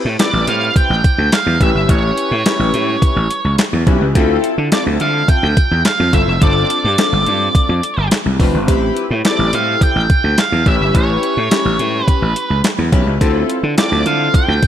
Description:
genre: early-eighties boogie funk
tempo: 106 BPM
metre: 4/4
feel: straight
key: unclear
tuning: A4 = 441 Hz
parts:
  - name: gritty slap bass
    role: bass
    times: 0.1-14.6 s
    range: F1 to D3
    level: -16 LUFS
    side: equal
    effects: overdrive
  - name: octave-fuzz lead guitar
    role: melody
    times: 0.2-14.7 s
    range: C#5 to G5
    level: -18 LUFS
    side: right 2 dB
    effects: distortion, slapback echo
  - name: chorused polysynth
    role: accompaniment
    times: 0.2-14.5 s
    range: C4 to B4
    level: -20 LUFS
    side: left 3 dB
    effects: slapback echo
  - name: crisp 8-bit digital drum machine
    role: drums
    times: 0.2-14.7 s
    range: handclaps, hi-hat, kick drum, snare drum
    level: -16 LUFS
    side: equal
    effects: none
room: light reverb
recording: none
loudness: -12 LUFS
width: side -10 dB against mid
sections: 0.0-14.7 A section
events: none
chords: 0.0 Am7; 1.6 A7; 4.2 Dm7; 6.4 G7sus4; 8.7 Am7; 10.7 A7; 13.2 Dm7

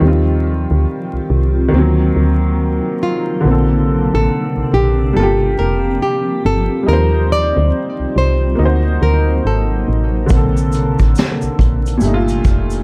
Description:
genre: lo-fi hip hop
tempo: 70 BPM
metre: 4/4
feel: swing 61% on 16ths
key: Bb major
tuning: A4 = 441 Hz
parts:
  - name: nylon-string guitar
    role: melody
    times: 0.0-10.1 s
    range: Eb4 to D5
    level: -22 LUFS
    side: equal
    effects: none
  - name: warm upright piano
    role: accompaniment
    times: 0.0-12.8 s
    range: Bb2 to C5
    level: -20 LUFS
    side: equal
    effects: cassette tape
  - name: granular cloud pad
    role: sustained chords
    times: 0.0-12.8 s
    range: Bb2 to A4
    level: -26 LUFS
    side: equal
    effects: built-in reverb
  - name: woody FM bass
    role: bass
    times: 0.0-12.8 s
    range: F1 to Eb2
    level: -18 LUFS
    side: equal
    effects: none
  - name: vintage brush drum kit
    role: drums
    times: 10.3-12.8 s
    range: hi-hat, kick drum, snare drum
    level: -17 LUFS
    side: equal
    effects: none
  - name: tube shaker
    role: percussion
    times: 10.3-12.8 s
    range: none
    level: -40 LUFS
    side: equal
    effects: none
room: moderate small room reverb, RT60 0.5 s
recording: dark, warm production, vinyl crackle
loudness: -15 LUFS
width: mono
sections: 0.0-12.8 A section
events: none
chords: 0.0 Eb69; 1.7 D7b9b13; 3.4 Bbmaj9; 5.2 Gm7; 6.9 Eb69; 8.6 D7b9b13; 10.3 Bbmaj9; 12.0 Gm9

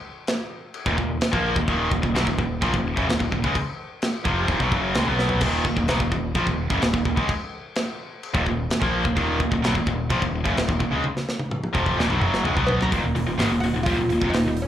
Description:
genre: heavy metal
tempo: 128 BPM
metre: 4/4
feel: straight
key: Eb minor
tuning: A4 = 442 Hz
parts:
  - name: tight metal drum kit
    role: drums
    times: 0.3-14.7 s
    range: china cymbal, crash cymbal, hi-hat, kick drum, snare drum, toms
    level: -26 LUFS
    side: equal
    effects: none
  - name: tight distorted guitar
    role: riff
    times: 0.9-14.7 s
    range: Eb2 to Cb4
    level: -25 LUFS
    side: left 5 dB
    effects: distortion, slapback echo
  - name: tight distorted guitar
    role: riff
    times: 0.9-14.6 s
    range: Eb2 to Cb4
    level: -27 LUFS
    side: right 9 dB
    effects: distortion, slapback echo
  - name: growling picked electric bass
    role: bass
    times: 0.9-14.7 s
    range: Eb1 to Db2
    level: -27 LUFS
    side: equal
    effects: overdrive
  - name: oud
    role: melody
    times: 12.7-14.7 s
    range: Db4 to Cb5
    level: -26 LUFS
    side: right 1 dB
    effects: none
room: light reverb, small room ambience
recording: live gig heard through the venue's PA, club reverb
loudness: -20 LUFS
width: side -11 dB against mid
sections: 0.0-12.9 A section; 12.9-14.7 B section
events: drum fill 5.2, 11.0-12.9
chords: 0.0 Ebm; 12.9 Eb5

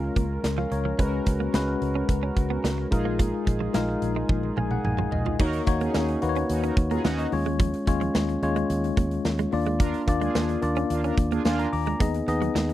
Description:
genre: 1980s-style pop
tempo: 109 BPM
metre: 4/4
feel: straight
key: Eb minor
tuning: A4 = 440 Hz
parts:
  - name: tine electric piano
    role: accompaniment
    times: 0.0-12.7 s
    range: Ab3 to D6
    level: -26 LUFS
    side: left 3 dB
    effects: medium stereo tremolo
  - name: analog synth brass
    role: stabs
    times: 0.0-11.7 s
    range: Bb3 to Bb4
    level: -33 LUFS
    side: right 5 dB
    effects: chorus
  - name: vintage muted fingered electric bass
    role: bass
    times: 0.0-12.7 s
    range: Bb1 to Eb2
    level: -29 LUFS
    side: equal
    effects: none
  - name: direct-recorded clean electric guitar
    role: riff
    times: 0.2-12.7 s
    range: F3 to Eb4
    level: -34 LUFS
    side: right 9 dB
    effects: wide subtle chorus, tape echo
  - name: big rock drum kit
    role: drums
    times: 0.2-12.7 s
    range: crash cymbal, hi-hat, kick drum, snare drum, tambourine, toms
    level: -25 LUFS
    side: equal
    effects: none
room: little or no reverb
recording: dry, close 1970s-style studio recording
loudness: -22 LUFS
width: side -14 dB against mid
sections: 0.0-5.4 A section; 5.4-12.7 B section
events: drum fill 4.3-5.4; tine electric piano fill 4.3-5.4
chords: 0.0 Bbm7/Db; 1.0 Db7sus4; 2.9 Bb7sus4; 5.4 Ebm7; 7.3 Db/Eb; 9.5 Bb/Eb; 12.0 Abm/Eb

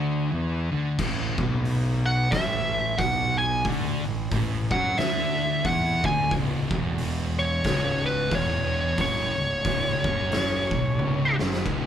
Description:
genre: stoner and doom metal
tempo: 90 BPM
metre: 4/4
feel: swing 59% on 8ths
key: C# phrygian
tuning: A4 = 441 Hz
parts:
  - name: thick fuzz guitar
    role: riff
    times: 0.0-11.9 s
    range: C#2 to F#3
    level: -31 LUFS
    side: left 8 dB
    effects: distortion
  - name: thick fuzz guitar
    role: riff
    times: 0.0-11.9 s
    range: C#2 to F#3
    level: -30 LUFS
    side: right 5 dB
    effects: distortion
  - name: fuzz fingered electric bass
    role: bass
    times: 0.0-11.9 s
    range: C#1 to F#2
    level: -31 LUFS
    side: equal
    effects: overdrive
  - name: oversized low-tuned drum kit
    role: drums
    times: 1.0-11.8 s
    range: crash cymbal, hi-hat, kick drum, ride cymbal, snare drum, toms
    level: -29 LUFS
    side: equal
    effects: none
  - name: fuzz lead guitar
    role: melody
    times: 2.1-11.4 s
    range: B4 to G#5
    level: -25 LUFS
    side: equal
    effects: distortion
room: moderate large studio reverb, RT60 0.8 s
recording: band playing live in one room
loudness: -22 LUFS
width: side -9 dB against mid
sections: 0.0-11.7 A section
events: drum fill 11.0-11.7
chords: 0.0 A5; 6.3 C#m

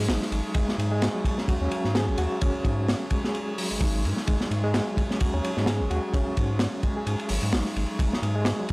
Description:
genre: breakbeat, breaks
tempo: 129 BPM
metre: 4/4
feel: swing 56% on 16ths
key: unclear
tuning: A4 = 440 Hz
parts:
  - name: reed electric piano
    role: riff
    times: 0.0-8.7 s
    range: F#3 to G#4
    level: -29 LUFS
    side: equal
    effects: fast tremolo, overdrive, analog delay
  - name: saturated sub bass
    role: bass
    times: 0.0-8.5 s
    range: G#1 to G#2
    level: -27 LUFS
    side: equal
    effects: none
  - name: crunchy breakbeat drum kit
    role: drums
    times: 0.1-8.7 s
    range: hi-hat, kick drum, ride cymbal, snare drum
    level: -26 LUFS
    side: equal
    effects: none
room: studio ambience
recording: dry, gritty hardware recording, transformer saturation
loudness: -23 LUFS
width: side -26 dB against mid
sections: 0.0-8.7 A section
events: none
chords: 0.0 G#5

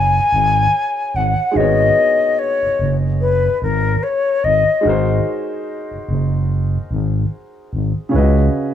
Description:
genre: hip hop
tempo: 73 BPM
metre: 4/4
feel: swing 59% on 16ths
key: G# minor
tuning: A4 = 440 Hz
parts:
  - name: mellow silver concert flute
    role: melody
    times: 0.0-4.8 s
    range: A#4 to G#5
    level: -16 LUFS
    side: left 3 dB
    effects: analog delay
  - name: warm upright piano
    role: accompaniment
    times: 0.0-8.7 s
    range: C#3 to D#5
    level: -22 LUFS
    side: equal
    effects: none
  - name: growling FM bass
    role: bass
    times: 0.0-8.5 s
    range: F#1 to C#2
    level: -17 LUFS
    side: equal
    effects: none
room: light reverb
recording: cassette tape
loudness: -14 LUFS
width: side -10 dB against mid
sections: 0.0-8.7 A section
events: break 4.8-8.7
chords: 0.0 G#m11; 4.8 G#7; 8.1 C#9sus4

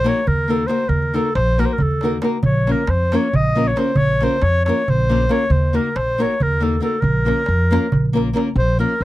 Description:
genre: balkan folk, Balkan wedding band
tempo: 274 BPM (eighths)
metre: 7/8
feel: straight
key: Bb harmonic minor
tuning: A4 = 440 Hz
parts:
  - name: clear clarinet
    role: melody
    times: 0.0-9.0 s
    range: A4 to Eb5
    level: -20 LUFS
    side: equal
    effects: none
  - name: nylon-string guitar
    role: accompaniment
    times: 0.0-8.9 s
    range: Bb3 to Bb4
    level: -20 LUFS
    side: left 2 dB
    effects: none
  - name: upright bass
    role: bass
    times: 0.0-9.0 s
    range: Bb1 to F2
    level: -20 LUFS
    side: equal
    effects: none
  - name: darbuka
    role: percussion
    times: 0.1-8.5 s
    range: none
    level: -22 LUFS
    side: right 2 dB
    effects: none
room: little or no reverb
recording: dry, close 1970s-style studio recording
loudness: -15 LUFS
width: side -15 dB against mid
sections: 0.0-8.6 A section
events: none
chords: 0.0 Ebm; 2.4 Bbm; 5.5 Ebm; 7.0 Bbm

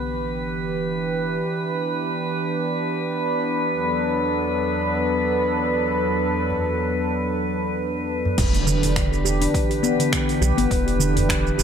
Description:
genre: organic downtempo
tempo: 103 BPM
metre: 4/4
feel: swing 56% on 16ths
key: E minor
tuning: A4 = 439 Hz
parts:
  - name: warm analog pad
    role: sustained chords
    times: 0.0-11.6 s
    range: E2 to B4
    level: -24 LUFS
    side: right 1 dB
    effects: chorus, sidechain pumping
  - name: sub drop and impact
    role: sound effects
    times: 0.0-1.4, 8.4-10.7 s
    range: none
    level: -31 LUFS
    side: equal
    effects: none
  - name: drifting glass-harmonics texture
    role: texture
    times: 0.0-11.6 s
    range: B4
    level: -27 LUFS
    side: left 1 dB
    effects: chorus, built-in reverb
  - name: udu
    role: percussion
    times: 6.5-11.3 s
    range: none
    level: -27 LUFS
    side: equal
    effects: none
  - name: round analog bass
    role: bass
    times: 8.4-11.6 s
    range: E1 to B1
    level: -23 LUFS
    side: equal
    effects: sidechain pumping
  - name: deep house drum kit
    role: drums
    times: 8.4-11.6 s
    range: crash cymbal, finger snaps, hi-hat, shaker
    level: -27 LUFS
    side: right 2 dB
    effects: overdrive, low-pass filter on hats, low-pass filter on perc, low-pass filter on snare, low-pass filter on cymbals, analog delay
  - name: electronic kick drum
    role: drums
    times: 8.4-11.4 s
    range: none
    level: -25 LUFS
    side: equal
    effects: overdrive
  - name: handpan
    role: arpeggios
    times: 8.7-11.6 s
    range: D3 to G4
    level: -24 LUFS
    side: left 2 dB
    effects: dub echo
room: wet spring reverb, RT60 1.4 s, digital ambience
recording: echo-heavy mix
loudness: -20 LUFS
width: side -7 dB against mid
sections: 0.0-8.4 A section; 8.4-11.6 B section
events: impact 0.0-1.4, 8.4-10.7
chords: 0.0 Em7; 3.7 Bm7/E; 8.4 Em7

